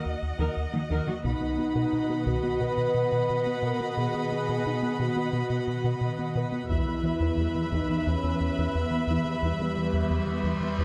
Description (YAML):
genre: cinematic, hybrid orchestral and electronic film score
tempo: 88 BPM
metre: 4/4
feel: straight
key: unclear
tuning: A4 = 439 Hz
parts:
  - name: rich chamber violin section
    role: second line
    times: 0.0-10.8 s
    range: D#5 to B5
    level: -39 LUFS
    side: equal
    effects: none
  - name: warm symphonic viola section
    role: accompaniment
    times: 0.0-10.8 s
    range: D#4 to E5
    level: -38 LUFS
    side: equal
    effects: none
  - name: ethereal airy pad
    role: sustained chords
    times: 0.0-10.8 s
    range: D#3 to D#5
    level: -40 LUFS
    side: equal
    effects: none
  - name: mellow French horn section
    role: sustained chords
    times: 0.0-10.8 s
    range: G3 to B4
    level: -33 LUFS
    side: equal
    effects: none
  - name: rubbery square bass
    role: riff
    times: 0.1-10.8 s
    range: D#2 to B3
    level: -32 LUFS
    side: equal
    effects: none
  - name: resonant blip pluck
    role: arpeggios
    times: 0.4-10.8 s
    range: D#3 to F#4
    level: -40 LUFS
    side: equal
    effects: none
  - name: rich symphonic cello section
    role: bass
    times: 0.4-10.8 s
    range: E2 to D#3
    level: -37 LUFS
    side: equal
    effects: none
  - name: taiko ensemble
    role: drums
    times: 1.2-2.6, 6.7-8.0 s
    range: none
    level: -38 LUFS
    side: equal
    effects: none
  - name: reverse cymbal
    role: sound effects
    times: 9.8-10.8 s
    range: none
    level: -42 LUFS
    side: equal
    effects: none
room: moderate scoring stage reverb, RT60 1.6 s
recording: close, detailed microphones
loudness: -28 LUFS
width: mono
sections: 0.0-10.8 A section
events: reverse cymbal 9.8-10.8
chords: 0.0 D#m; 1.2 B; 6.7 Em